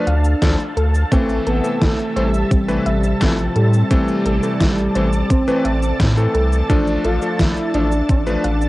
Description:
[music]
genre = synthwave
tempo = 86 BPM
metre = 4/4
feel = straight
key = unclear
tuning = A4 = 442 Hz
[part]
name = expressive portamento lead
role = melody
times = 0.0-8.7 s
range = F3 to F4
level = -22 LUFS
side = equal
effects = analog chorus, cassette tape, analog delay
[part]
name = soft synth bell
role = second line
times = 0.0-0.7, 5.3-8.7 s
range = C4 to F4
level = -28 LUFS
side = equal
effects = none
[part]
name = analog string pad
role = sustained chords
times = 0.0-8.7 s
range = C3 to A5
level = -26 LUFS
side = equal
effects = ensemble chorus, vintage 12-bit sampler grit, sidechain pumping
[part]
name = clear electric grand piano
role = stabs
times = 0.0-8.4 s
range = E3 to B4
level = -23 LUFS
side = left 2 dB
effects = none
[part]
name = soft round pluck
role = arpeggios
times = 0.1-8.7 s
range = F3 to F5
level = -27 LUFS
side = right 1 dB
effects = chorus, analog delay
[part]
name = round analog bass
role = bass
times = 0.1-8.7 s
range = A1 to A2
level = -19 LUFS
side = equal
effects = sidechain pumping
[part]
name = pop drum kit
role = drums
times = 0.1-8.7 s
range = cabasa, hi-hat, snare drum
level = -24 LUFS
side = equal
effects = overdrive, cassette tape
[part]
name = electronic kick drum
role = drums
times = 0.4-8.2 s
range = none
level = -18 LUFS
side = equal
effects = overdrive, cassette tape
[sound]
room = light reverb, digital ambience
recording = home recording on cassette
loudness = -15 LUFS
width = side -18 dB against mid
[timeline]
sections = 0.0-8.7 A section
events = none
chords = 0.0 Dm; 1.1 Am; 6.7 Dm/A

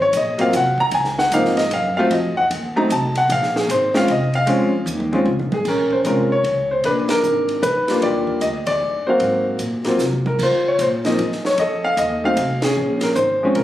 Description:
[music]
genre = jazz piano trio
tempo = 152 BPM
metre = 3/4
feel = swing 64% on 8ths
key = Bb minor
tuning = A4 = 441 Hz
[part]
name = clear upright piano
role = melody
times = 0.0-13.6 s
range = F3 to Bb5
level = -17 LUFS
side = left 1 dB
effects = none
[part]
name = upright bass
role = bass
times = 0.0-13.6 s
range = Ab1 to Db3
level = -26 LUFS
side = equal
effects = none
[part]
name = compact cocktail drum kit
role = drums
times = 0.1-13.6 s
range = crash cymbal, hi-hat, kick drum, ride cymbal, snare drum, toms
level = -28 LUFS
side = right 2 dB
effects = none
[sound]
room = light reverb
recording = recorded on a phone in the room, club reverb, compression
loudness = -16 LUFS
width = side -13 dB against mid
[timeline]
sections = 0.0-5.7 A section; 5.7-13.6 B section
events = upright piano solo 0.0-5.7; drum fill 4.9-5.7, 10.0-10.4; band accent 7.0, 12.6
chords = 0.0 Ab13; 0.9 Dbmaj9; 2.1 F7b9; 3.3 Bb7sus2; 5.7 Bbmadd9; 6.8 Bb7b9; 8.0 Ebmaj7; 9.2 Ab13; 10.4 Dbmaj13; 11.6 F7; 12.8 Bbm9

